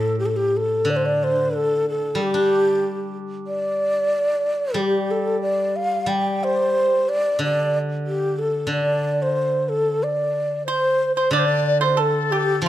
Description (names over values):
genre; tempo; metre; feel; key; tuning
chinese traditional, Chinese chamber ensemble; 92 BPM; 2/4; rubato; unclear; A4 = 440 Hz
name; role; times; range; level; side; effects
breathy mellow xiao; melody; 0.0-12.7 s; F4 to G5; -20 LUFS; equal; none
steel-string zither; accompaniment; 0.0-12.7 s; A2 to D4; -25 LUFS; equal; none
bright large dizi; second line; 10.6-12.7 s; D4 to D5; -24 LUFS; left 4 dB; none
pipa; second line; 10.7-12.7 s; G4 to D5; -24 LUFS; right 8 dB; none
room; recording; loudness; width
moderate recital hall reverb, RT60 1.6 s; dark, warm production; -19 LUFS; side -13 dB against mid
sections
0.9-11.3 A section; 11.3-12.7 B section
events
none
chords
none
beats
0.20 | 0.87 1.53 | 2.17 2.82 | 3.47 4.12 | 4.77 5.42 | 6.09 6.76 | 7.41 8.05 | 8.70 9.35 | 10.00 10.65 | 11.33 11.99 | 12.65